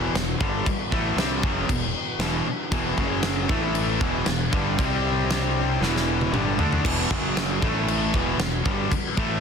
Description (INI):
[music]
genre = hard rock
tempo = 116 BPM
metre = 4/4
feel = straight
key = E minor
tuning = A4 = 440 Hz
[part]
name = mellow tonewheel organ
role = sustained chords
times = 0.0-9.4 s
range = E3 to F#5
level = -38 LUFS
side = equal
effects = none
[part]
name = crunchy overdriven guitar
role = riff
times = 0.0-9.4 s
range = E2 to D4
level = -29 LUFS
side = right 11 dB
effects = none
[part]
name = high-gain distorted guitar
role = riff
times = 0.0-9.4 s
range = E2 to D4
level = -27 LUFS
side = left 10 dB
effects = distortion
[part]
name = fingered electric bass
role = bass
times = 0.0-9.4 s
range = E1 to D2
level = -29 LUFS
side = equal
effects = none
[part]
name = big rock drum kit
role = drums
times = 0.2-9.3 s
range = crash cymbal, kick drum, snare drum, toms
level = -26 LUFS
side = equal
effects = soft clipping on kick
[part]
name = distorted electric guitar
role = riff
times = 2.7-6.8 s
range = E2 to D4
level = -31 LUFS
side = equal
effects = overdrive
[sound]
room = moderate large studio reverb, RT60 1.3 s, small room ambience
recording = dense, heavily limited modern master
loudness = -21 LUFS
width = side -6 dB against mid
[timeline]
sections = 0.0-6.8 A section; 6.8-9.4 A section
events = drum fill 5.8-6.8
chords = 0.0 Em; 3.0 F#5; 3.5 A5; 4.0 Em; 4.8 C5; 5.8 Em; 6.8 E5; 7.1 F#5; 7.6 A5; 8.1 Em